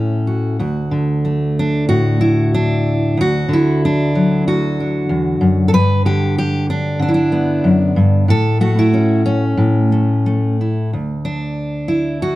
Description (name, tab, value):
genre	folk, solo fingerstyle acoustic guitar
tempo	93 BPM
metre	4/4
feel	rubato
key	D major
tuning	A4 = 439 Hz
part	fingerpicked steel-string acoustic guitar	solo	0.0-12.4 s	D2 to B4	-14 LUFS	equal	none
room	moderate studio reverb, RT60 0.8 s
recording	dark, warm production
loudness	-14 LUFS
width	side -16 dB against mid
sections	0.0-10.9 A section; 10.9-12.4 B section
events	none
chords	0.0 A6; 0.6 Dadd9; 5.7 G; 8.3 A; 10.9 N.C.